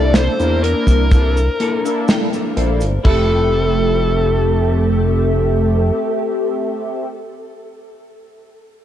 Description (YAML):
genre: vaporwave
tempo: 62 BPM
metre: 4/4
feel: straight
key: F major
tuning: A4 = 438 Hz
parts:
  - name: dark smooth lead guitar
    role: melody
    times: 0.0-7.1 s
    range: A4 to D5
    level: -21 LUFS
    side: equal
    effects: overdrive, tape echo
  - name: mellow synth brass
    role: accompaniment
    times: 0.0-7.1 s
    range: A3 to E5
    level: -21 LUFS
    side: left 1 dB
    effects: phaser, wide subtle chorus, analog delay
  - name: clean electric guitar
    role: riff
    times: 0.0-7.1 s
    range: Bb3 to A5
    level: -26 LUFS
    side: left 3 dB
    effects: ensemble chorus, analog delay
  - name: chorused synth bass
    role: bass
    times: 0.0-5.9 s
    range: F1 to E2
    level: -16 LUFS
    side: equal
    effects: none
  - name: modern studio drum kit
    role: drums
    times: 0.1-3.2 s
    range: cabasa, crash cymbal, hi-hat, snare drum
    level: -20 LUFS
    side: right 1 dB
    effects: gated reverb
  - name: kick drum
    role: drums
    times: 0.9-3.2 s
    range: none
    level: -13 LUFS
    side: equal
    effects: none
room: light reverb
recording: cassette tape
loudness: -14 LUFS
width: side -11 dB against mid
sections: 0.0-3.1 A section; 3.1-6.9 B section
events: clean electric guitar fill 1.1-3.1; band accent 2.1-2.6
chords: 0.0 C13; 3.1 Fmaj7